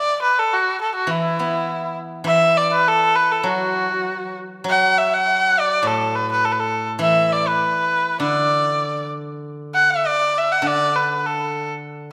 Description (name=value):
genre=chinese traditional, Chinese chamber ensemble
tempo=101 BPM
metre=2/4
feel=rubato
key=D gong mode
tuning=A4 = 441 Hz
part: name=rich erhu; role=melody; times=0.0-11.7 s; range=E4 to F#5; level=-20 LUFS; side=equal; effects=none
part: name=steel-string zither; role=accompaniment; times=1.1-12.1 s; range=A2 to B3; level=-28 LUFS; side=equal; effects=none
room=moderate scoring stage reverb, RT60 1.5 s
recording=none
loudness=-19 LUFS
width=mono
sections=0.0-9.4 A section; 9.4-12.1 B section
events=none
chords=none